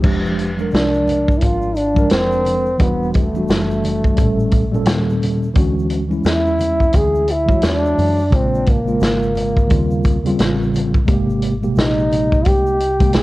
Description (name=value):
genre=hip hop, jazz-hop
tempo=87 BPM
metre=4/4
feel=swing 61% on 16ths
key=unclear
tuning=A4 = 439 Hz
part: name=mellow tine electric piano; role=accompaniment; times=0.0-13.2 s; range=Bb2 to G5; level=-20 LUFS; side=equal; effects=medium stereo tremolo, cassette tape
part: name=deep dub fingered electric bass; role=bass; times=0.0-13.2 s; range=E1 to F#2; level=-22 LUFS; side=equal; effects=none
part: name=vintage drum kit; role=drums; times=0.0-13.2 s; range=crash cymbal, hi-hat, kick drum, snare drum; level=-18 LUFS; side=equal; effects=none
part: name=egg shaker and congas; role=percussion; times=0.0-13.2 s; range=none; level=-32 LUFS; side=equal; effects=none
part: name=breathy trombone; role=melody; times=0.7-13.2 s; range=A3 to G#4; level=-19 LUFS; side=equal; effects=cassette tape, analog delay
room=light reverb, studio reverb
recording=home recording on cassette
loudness=-14 LUFS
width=side -18 dB against mid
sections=0.0-13.2 A section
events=none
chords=0.0 Fm69; 2.8 Em9; 4.2 A7b9; 5.6 Dmaj9#11; 8.3 Bbm7; 9.7 Eb13; 11.1 Abmaj9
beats=| 0.04 0.73 1.42 2.11 | 2.80 3.49 4.18 4.87 | 5.56 6.25 6.94 7.63 | 8.32 9.01 9.70 10.39 | 11.08 11.77 12.46 13.15